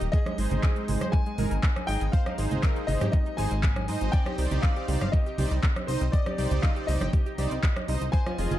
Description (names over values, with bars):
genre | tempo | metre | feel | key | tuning
progressive house | 120 BPM | 4/4 | straight | unclear | A4 = 440 Hz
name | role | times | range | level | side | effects
lush unison pad | sustained chords | 0.0-8.6 s | C3 to Ab4 | -40 LUFS | equal | none
plucky analog bass | bass | 0.0-8.6 s | Eb1 to Ab2 | -28 LUFS | equal | sidechain pumping
big-room dance drum kit | drums | 0.0-8.6 s | handclaps, hi-hat, rim click | -36 LUFS | equal | none
clear grand piano | melody | 0.1-8.6 s | C5 to Ab5 | -36 LUFS | left 3 dB | sidechain pumping, dub echo
analog pluck | arpeggios | 0.1-8.6 s | Ab3 to G5 | -37 LUFS | right 1 dB | chorus, sidechain pumping, dub echo
electronic kick drum | drums | 0.1-8.2 s | none | -24 LUFS | equal | overdrive
congas and woodblock | percussion | 0.3-8.6 s | none | -35 LUFS | right 3 dB | sidechain pumping on perc
soft supersaw | stabs | 0.4-8.6 s | Eb4 to Eb5 | -35 LUFS | right 2 dB | sidechain pumping
room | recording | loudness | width
little or no reverb | dark, warm production | -24 LUFS | side -13 dB against mid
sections
0.0-8.6 A section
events
none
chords
0.1 Ab; 4.1 Cmadd9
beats
| 0.13 0.63 1.13 1.63 | 2.13 2.63 3.13 3.63 | 4.13 4.63 5.13 5.63 | 6.13 6.63 7.13 7.63 | 8.13